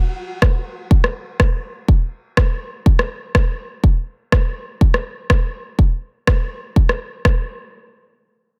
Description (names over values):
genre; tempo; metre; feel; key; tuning
minimal techno; 123 BPM; 4/4; swing 54% on 16ths; none; none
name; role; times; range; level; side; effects
electronic kick drum; drums; 0.4-7.4 s; none; -17 LUFS; equal; none
electronic rim click; drums; 0.4-7.4 s; none; -24 LUFS; equal; none
room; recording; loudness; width
little or no reverb; none; -19 LUFS; mono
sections
0.0-7.7 A section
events
none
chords
none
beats
0.42 0.91 1.40 | 1.88 2.37 2.86 3.35 | 3.83 4.32 4.81 5.30 | 5.79 6.27 6.76 7.25